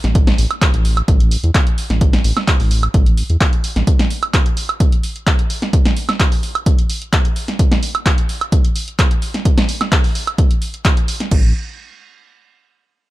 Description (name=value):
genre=acid house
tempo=129 BPM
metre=4/4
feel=straight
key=unclear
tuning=A4 = 440 Hz
part: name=round analog bass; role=bass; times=0.0-3.8, 11.3-11.5 s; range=A1 to E2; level=-16 LUFS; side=equal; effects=sidechain pumping
part: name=punchy analog drum machine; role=drums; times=0.0-11.3 s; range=handclaps, hi-hat, snare drum, woodblock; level=-19 LUFS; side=right 1 dB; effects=none
part: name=punchy analog drum machine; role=drums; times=0.2-11.4 s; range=crash cymbal, kick drum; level=-14 LUFS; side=equal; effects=none
room=little or no reverb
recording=dark, warm production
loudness=-13 LUFS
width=side -17 dB against mid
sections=0.0-11.3 A section; 11.3-13.1 B section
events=none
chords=none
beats=| 0.15 0.62 1.08 1.55 | 2.01 2.48 2.94 3.41 | 3.87 4.34 4.80 5.27 | 5.73 6.20 6.66 7.13 | 7.59 8.06 8.52 8.99 | 9.45 9.92 10.38 10.85 | 11.31